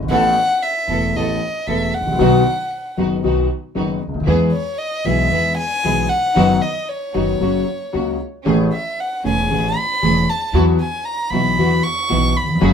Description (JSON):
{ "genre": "tango", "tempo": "115 BPM", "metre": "4/4", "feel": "rubato", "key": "unclear", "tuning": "A4 = 444 Hz", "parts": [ { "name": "warm concert grand piano", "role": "accompaniment", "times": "0.0-12.7 s", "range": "E1 to A4", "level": "-18 LUFS", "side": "left 2 dB", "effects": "none" }, { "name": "upright bass", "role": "bass", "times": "0.0-12.7 s", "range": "E1 to E2", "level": "-22 LUFS", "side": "right 2 dB", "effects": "none" }, { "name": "warm violin", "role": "second line", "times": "0.1-12.6 s", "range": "C#5 to C#6", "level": "-20 LUFS", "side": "equal", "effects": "none" }, { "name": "rich studio string section", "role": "stabs", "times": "0.1-12.7 s", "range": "A3 to A4", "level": "-26 LUFS", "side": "right 6 dB", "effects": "none" } ], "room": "moderate studio reverb, RT60 0.6 s", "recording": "minimal, uncompressed stereo recording", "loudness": "-16 LUFS", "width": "side -7 dB against mid", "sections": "0.0-12.7 A section", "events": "violin solo 0.0-12.7", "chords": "0.1 Asus2; 2.2 B; 4.3 E; 6.4 B/F#; 7.4 F#; 8.5 Amaj7; 10.5 Esus2" }